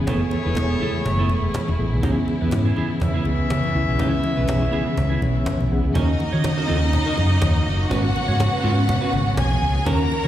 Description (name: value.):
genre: disco.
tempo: 122 BPM.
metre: 4/4.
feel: swing 56% on 16ths.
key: G# minor from 6.0 s.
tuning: A4 = 438 Hz.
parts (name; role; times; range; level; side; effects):
reed electric piano; accompaniment; 0.0-6.0 s; D#3 to F#5; -25 LUFS; left 2 dB; fast tremolo, slapback echo.
clear studio string section; sustained chords; 0.0-10.3 s; A2 to G#4; -28 LUFS; right 2 dB; none.
hollow-body short-scale fingered electric bass; bass; 0.0-10.3 s; E1 to D#3; -21 LUFS; equal; none.
clean electric guitar; accompaniment; 0.1-10.3 s; B3 to C#5; -29 LUFS; right 5 dB; slapback echo.
clear horn section; stabs; 0.1-5.7 s; A3 to E5; -28 LUFS; left 1 dB; tape echo, slapback echo.
cajon; drums; 0.1-10.2 s; none; -28 LUFS; equal; none.
congas; percussion; 0.1-10.2 s; none; -31 LUFS; left 6 dB; none.
cowbell; percussion; 0.1-10.0 s; none; -38 LUFS; left 2 dB; none.
warm studio violin section; second line; 6.0-10.3 s; D#4 to A#5; -24 LUFS; left 1 dB; slapback echo.
room: small room reverb.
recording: live gig heard through the venue's PA, recital hall reverb.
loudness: -18 LUFS.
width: side -12 dB against mid.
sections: 0.0-6.0 A section; 6.0-10.3 B section.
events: reed electric piano fill 5.0-6.0.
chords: 0.1 F#m11; 2.0 C#m7; 6.0 D#m7; 7.9 G#m11.